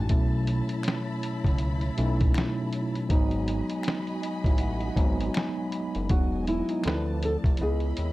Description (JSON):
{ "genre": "lo-fi hip hop", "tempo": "80 BPM", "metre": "4/4", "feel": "swing 60% on 16ths", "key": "unclear", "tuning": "A4 = 442 Hz", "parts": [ { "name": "tine electric piano", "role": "accompaniment", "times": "0.0-8.1 s", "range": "F#2 to B5", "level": "-30 LUFS", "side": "right 1 dB", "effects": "medium stereo tremolo, cassette tape" }, { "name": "warm studio string section", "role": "sustained chords", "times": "0.0-8.1 s", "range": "F3 to B5", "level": "-38 LUFS", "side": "left 1 dB", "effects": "none" }, { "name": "fat analog bass", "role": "bass", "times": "0.0-8.1 s", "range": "E1 to D#2", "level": "-29 LUFS", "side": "equal", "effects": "none" }, { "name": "lo-fi sampler-style drum kit", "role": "drums", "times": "0.1-8.1 s", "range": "hi-hat, kick drum, snare drum", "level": "-26 LUFS", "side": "equal", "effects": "none" }, { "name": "finger snap", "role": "percussion", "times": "0.8-7.0 s", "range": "none", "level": "-42 LUFS", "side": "left 4 dB", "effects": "none" }, { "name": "flamenco guitar", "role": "melody", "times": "6.1-8.1 s", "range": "E4 to B4", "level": "-31 LUFS", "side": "equal", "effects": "none" } ], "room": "light reverb", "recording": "dark, warm production", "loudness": "-24 LUFS", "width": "side -18 dB against mid", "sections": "0.0-6.1 A section; 6.1-8.1 B section", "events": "none", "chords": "0.1 B9sus4; 3.1 G#m7; 6.1 Emaj9; 6.8 Dm9; 7.6 C#m9" }